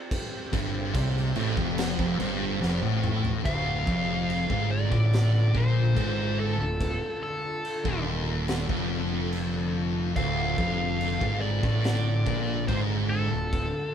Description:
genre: stoner and doom metal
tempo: 71 BPM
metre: 4/4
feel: straight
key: D minor from 3.4 s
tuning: A4 = 440 Hz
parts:
  - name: bowed-like drone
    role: sustained chords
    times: 0.0-13.9 s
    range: D3 to A4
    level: -38 LUFS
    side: equal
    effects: built-in reverb
  - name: raw garage drum kit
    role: drums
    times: 0.1-13.7 s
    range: crash cymbal, kick drum, snare drum, toms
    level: -33 LUFS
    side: equal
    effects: none
  - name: thick fuzz guitar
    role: riff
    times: 0.5-13.7 s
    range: D2 to C3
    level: -29 LUFS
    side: left 6 dB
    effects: distortion
  - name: thick fuzz guitar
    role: riff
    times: 0.5-13.7 s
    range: D2 to C3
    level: -29 LUFS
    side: right 5 dB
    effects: distortion
  - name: fuzz fingered electric bass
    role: bass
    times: 0.5-13.7 s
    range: D1 to C2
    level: -34 LUFS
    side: equal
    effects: overdrive
  - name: fuzz lead guitar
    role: melody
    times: 3.5-13.9 s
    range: A4 to F5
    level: -31 LUFS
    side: left 1 dB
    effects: wah, distortion
room: moderate studio reverb, RT60 0.5 s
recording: band playing live in one room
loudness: -24 LUFS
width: side -8 dB against mid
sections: 0.0-3.4 A section; 3.4-13.9 B section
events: drum fill 2.6-3.4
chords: 0.0 F5; 3.4 Dm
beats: | 0.10 0.94 1.77 2.61 | 3.45 4.28 5.12 5.96 | 6.80 7.64 8.48 9.32 | 10.16 11.00 11.85 12.69 | 13.53

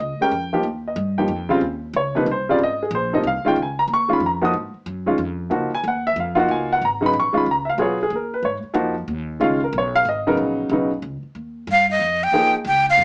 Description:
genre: jazz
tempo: 185 BPM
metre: 3/4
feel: swing 64% on 8ths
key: Db mixolydian from 3.6 s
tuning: A4 = 441 Hz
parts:
  - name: warm baby grand piano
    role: accompaniment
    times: 0.0-12.5 s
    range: C3 to Eb6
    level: -21 LUFS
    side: equal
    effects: none
  - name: upright bass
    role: bass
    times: 0.0-13.0 s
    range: Ab1 to Ab2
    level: -32 LUFS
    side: equal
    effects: none
  - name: breathy bright jazz flute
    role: melody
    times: 11.7-13.0 s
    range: Eb5 to G5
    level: -17 LUFS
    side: equal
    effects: none
room: moderate club reverb, RT60 0.6 s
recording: small speaker sound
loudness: -21 LUFS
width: mono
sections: 0.0-3.6 A section; 3.6-11.4 A section; 11.4-13.0 A section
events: flute solo 11.4-13.0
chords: 0.0 Eb9; 1.6 Ab; 3.6 Dbadd9; 5.5 Bbm/Db; 7.5 Db9; 9.4 Bbm; 11.4 Eb9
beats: 0.32 | 0.64 0.97 1.29 | 1.61 1.94 2.26 | 2.59 2.91 3.24 | 3.56 3.89 4.21 | 4.54 4.86 5.19 | 5.51 5.84 6.16 | 6.49 6.81 7.13 | 7.46 7.78 8.11 | 8.43 8.76 9.08 | 9.41 9.73 10.06 | 10.38 10.71 11.03 | 11.35 11.68 12.00 | 12.33 12.65 12.98

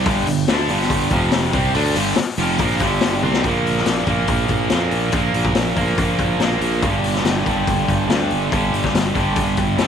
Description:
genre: classic rock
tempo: 142 BPM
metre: 4/4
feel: straight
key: G minor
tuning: A4 = 439 Hz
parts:
  - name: sludgy distorted guitar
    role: riff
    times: 0.0-9.9 s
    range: F2 to D4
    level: -19 LUFS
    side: right 1 dB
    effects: overdrive
  - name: modern bright fingered electric bass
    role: bass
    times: 0.0-9.9 s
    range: F1 to F2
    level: -23 LUFS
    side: right 2 dB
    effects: none
  - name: raw garage drum kit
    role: drums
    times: 0.1-9.9 s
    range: hi-hat, kick drum, snare drum, toms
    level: -21 LUFS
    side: left 3 dB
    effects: none
room: light reverb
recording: 1960s-style stereo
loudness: -16 LUFS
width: side -8 dB against mid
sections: 0.0-3.4 A section; 3.4-9.9 B section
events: drum fill 3.2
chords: 0.1 G5; 1.1 F5; 1.5 Gm; 3.4 Bb5; 6.8 G5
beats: | 0.06 0.48 0.91 1.33 | 1.75 2.17 2.60 3.02 | 3.44 3.87 4.29 4.71 | 5.14 5.56 5.99 6.41 | 6.83 7.25 7.68 8.10 | 8.52 8.95 9.37 9.79

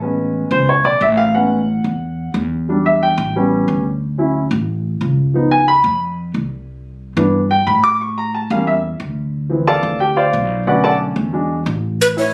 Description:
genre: Afro-Cuban jazz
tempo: 180 BPM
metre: 4/4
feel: straight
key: A major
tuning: A4 = 437 Hz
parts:
  - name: warm baby grand piano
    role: accompaniment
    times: 0.0-12.3 s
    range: D3 to D6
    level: -18 LUFS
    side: equal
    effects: none
  - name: upright bass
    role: bass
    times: 0.0-12.3 s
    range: A1 to A2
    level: -22 LUFS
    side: equal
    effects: none
  - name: breathy mellow jazz flute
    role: melody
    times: 12.0-12.3 s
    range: B4 to C#5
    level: -16 LUFS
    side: equal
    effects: none
room: moderate club reverb, RT60 0.7 s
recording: recorded on a phone in the room, studio reverb, compression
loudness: -17 LUFS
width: mono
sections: 0.0-1.3 A section; 1.3-12.0 A section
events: grand piano solo 0.0-12.0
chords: 0.0 Amaj7; 1.3 Amaj9; 2.7 Em7; 3.3 A9; 4.0 Dmaj9; 5.3 C#9; 6.7 Cmaj7; 8.0 A7b9; 9.3 Dm7; 10.7 Bm7; 11.3 E9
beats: | 0.01 0.35 0.68 1.01 | 1.35 1.68 2.01 2.35 | 2.68 3.01 3.35 3.68 | 4.01 4.34 4.68 5.01 | 5.34 5.68 6.01 6.34 | 6.68 7.01 7.34 7.67 | 8.01 8.34 8.67 9.00 | 9.33 9.67 10.00 10.33 | 10.66 10.99 11.32 11.66 | 11.99 12.32

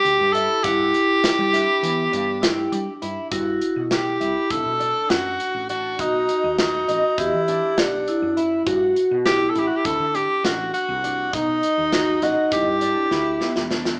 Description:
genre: progressive instrumental, band music in an uneven meter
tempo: 202 BPM (eighths)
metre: 9/8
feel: straight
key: G major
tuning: A4 = 440 Hz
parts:
  - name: bright tenor saxophone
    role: melody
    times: 0.0-13.7 s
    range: D4 to A4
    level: -24 LUFS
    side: equal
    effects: none
  - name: vibraphone with medium hard mallets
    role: second line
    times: 0.0-14.0 s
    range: B3 to G4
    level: -27 LUFS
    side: equal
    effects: none
  - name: fingerpicked twelve-string acoustic guitar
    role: arpeggios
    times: 0.0-14.0 s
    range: D4 to F#5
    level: -30 LUFS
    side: equal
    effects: none
  - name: woody fretless electric bass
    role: bass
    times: 0.0-14.0 s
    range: E1 to G3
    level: -36 LUFS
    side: equal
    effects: none
  - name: modern studio drum kit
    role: drums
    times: 0.1-14.0 s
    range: hi-hat, kick drum, snare drum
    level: -27 LUFS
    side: equal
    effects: none
  - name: egg shaker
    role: percussion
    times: 0.6-3.2 s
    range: none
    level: barely audible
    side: none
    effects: none
room: moderate large studio reverb, RT60 1.3 s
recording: band playing live in one room, small speaker sound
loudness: -21 LUFS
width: mono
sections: 0.0-3.3 A section; 3.3-14.0 B section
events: drum fill 13.1-14.0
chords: 0.0 G5; 3.3 Gmaj7; 4.5 Bm7; 6.0 B; 7.2 Em7; 8.7 Gmaj7; 9.8 D7; 11.3 B; 12.5 G6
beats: 0.05 0.35 | 0.64 0.94 1.24 1.54 1.83 2.13 2.43 2.72 3.02 | 3.32 3.62 3.91 4.21 4.51 4.80 5.10 5.40 5.69 | 5.99 6.29 6.58 6.88 7.18 7.47 7.77 8.07 8.36 | 8.66 8.96 9.25 9.55 9.85 10.14 10.44 10.74 11.04 | 11.33 11.63 11.93 12.22 12.52 12.82 13.11 13.41 13.71

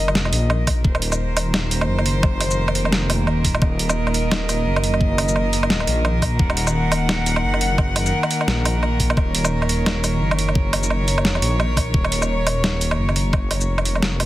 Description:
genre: half-time drum and bass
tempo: 173 BPM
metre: 4/4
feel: swing 58% on 16ths, half-time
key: Eb dorian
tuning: A4 = 443 Hz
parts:
  - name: warm studio cello section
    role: sustained chords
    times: 0.0-14.3 s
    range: Eb3 to Gb5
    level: -23 LUFS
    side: right 1 dB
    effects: sidechain pumping
  - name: dark detuned saw bass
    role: bass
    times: 0.0-14.3 s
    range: Eb1 to Bb1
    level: -21 LUFS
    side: equal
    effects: none
  - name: boom bap sampler-style drum kit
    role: drums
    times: 0.1-14.3 s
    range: hi-hat, shaker, snare drum, woodblock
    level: -22 LUFS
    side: right 1 dB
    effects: overdrive, studio reverb
  - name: electronic kick drum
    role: drums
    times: 0.7-13.4 s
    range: none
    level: -20 LUFS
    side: equal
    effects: overdrive, studio reverb
room: light reverb, digital ambience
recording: heavily compressed radio sound, multiband compression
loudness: -17 LUFS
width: side -15 dB against mid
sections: 0.0-14.3 A section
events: none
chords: 0.0 Eb5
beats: 0.15 0.50 | 0.85 1.19 1.54 1.89 | 2.23 2.58 2.93 3.27 | 3.62 3.97 4.32 4.66 | 5.01 5.36 5.70 6.05 | 6.40 6.74 7.09 7.44 | 7.78 8.13 8.48 8.82 | 9.17 9.52 9.86 10.21 | 10.56 10.90 11.25 11.60 | 11.95 12.29 12.64 12.99 | 13.33 13.68 14.03

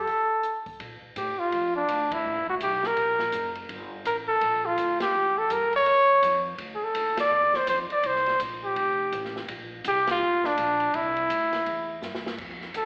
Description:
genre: jazz, small-group swing and bop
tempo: 166 BPM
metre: 4/4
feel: swing 63% on 8ths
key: unclear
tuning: A4 = 440 Hz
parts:
  - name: mellow trumpet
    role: melody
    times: 0.0-12.9 s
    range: D4 to D5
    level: -25 LUFS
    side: equal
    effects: none
  - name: upright bass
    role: bass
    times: 0.0-12.9 s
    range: E1 to Bb2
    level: -45 LUFS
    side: equal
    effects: none
  - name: open jazz drum kit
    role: drums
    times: 0.1-12.8 s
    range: crash cymbal, hi-hat, kick drum, ride cymbal, snare drum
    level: -39 LUFS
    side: equal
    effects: none
room: wet club reverb, RT60 0.7 s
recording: live gig heard through the venue's PA, recital hall reverb, AM radio sound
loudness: -26 LUFS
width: mono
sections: 0.8-12.4 A section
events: break 0.1-0.8; band accent 2.1, 5.0, 7.1, 10.0; drum fill 12.0-12.4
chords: 0.1 N.C.; 0.8 Bbmaj7; 2.2 Asus2; 3.0 Gb; 3.7 Gm9; 5.1 Edim; 5.9 Ebsus2; 6.6 Dmadd9; 8.0 Gmadd11 (rootless); 8.8 Fadd9; 9.5 Bbadd9; 10.9 Cadd9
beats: 0.08 0.44 | 0.80 1.16 1.52 1.88 | 2.25 2.61 2.97 3.33 | 3.69 4.05 4.41 4.77 | 5.13 5.50 5.86 6.22 | 6.58 6.94 7.30 7.66 | 8.03 8.39 8.75 9.11 | 9.47 9.84 10.20 10.56 | 10.92 11.29 11.65 12.01 | 12.38 12.74

